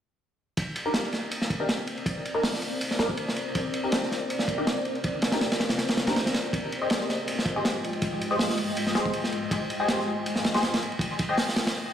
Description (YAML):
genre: drum and bass, jungle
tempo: 161 BPM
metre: 4/4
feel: swing 54% on 16ths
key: C minor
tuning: A4 = 440 Hz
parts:
  - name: granular cloud pad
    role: sustained chords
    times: 1.3-11.7 s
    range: Ab3 to G5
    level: -32 LUFS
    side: equal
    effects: built-in reverb
  - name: crunchy breakbeat drum kit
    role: drums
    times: 0.6-11.7 s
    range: hi-hat, kick drum, ride cymbal, snare drum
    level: -27 LUFS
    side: equal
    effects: high-pass filter on kick, high-pass filter on cymbals, high-pass filter on hats, high-pass filter on snare, high-pass filter on room
  - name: band-passed chord stab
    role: stabs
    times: 0.9-11.4 s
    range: D4 to Eb5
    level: -31 LUFS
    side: left 1 dB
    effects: phaser, ensemble chorus, dub echo
room: wet echo chamber reverb, RT60 1.7 s, small room ambience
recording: played on a big sound system in a bare room, stone room reverb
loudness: -25 LUFS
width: side -9 dB against mid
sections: 0.6-11.9 A section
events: filter sweep on ambient pad 0.6-11.9; filter sweep on synth stab 0.6-11.9; break 11.7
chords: 0.6 Cm9; 6.5 Fm9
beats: | 0.57 0.94 1.31 1.69 | 2.06 2.43 2.81 3.18 | 3.55 3.92 4.30 4.67 | 5.04 5.41 5.79 6.16 | 6.53 6.91 7.28 7.65 | 8.02 8.39 8.77 9.14 | 9.51 9.89 10.26 10.63 | 11.00 11.38 11.75